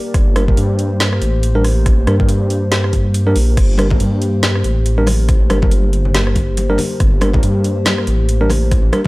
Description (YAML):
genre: deep dubstep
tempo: 140 BPM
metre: 4/4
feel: swing 58% on 16ths, half-time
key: G minor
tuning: A4 = 440 Hz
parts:
  - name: dark analog pad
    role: sustained chords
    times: 0.0-9.1 s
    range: Bb3 to D5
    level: -23 LUFS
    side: left 1 dB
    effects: chorus
  - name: dark detuned saw bass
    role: bass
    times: 0.1-8.9 s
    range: G1 to G2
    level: -15 LUFS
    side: equal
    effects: none
  - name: electronic kick drum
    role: drums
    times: 0.1-9.1 s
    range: none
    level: -15 LUFS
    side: equal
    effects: overdrive, studio reverb
  - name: garage drum kit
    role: drums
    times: 0.1-9.0 s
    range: crash cymbal, hi-hat, rim click, snare drum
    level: -21 LUFS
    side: equal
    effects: overdrive, studio reverb
  - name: bell-like tine electric piano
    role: stabs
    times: 0.4-9.0 s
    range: G3 to Bb4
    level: -21 LUFS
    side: right 1 dB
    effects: dub echo
  - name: congas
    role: percussion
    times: 3.8-9.1 s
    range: none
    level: -26 LUFS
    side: left 2 dB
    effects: none
room: digital ambience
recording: dry, gritty hardware recording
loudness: -12 LUFS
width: side -21 dB against mid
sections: 0.0-9.1 A section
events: none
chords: 0.0 Gm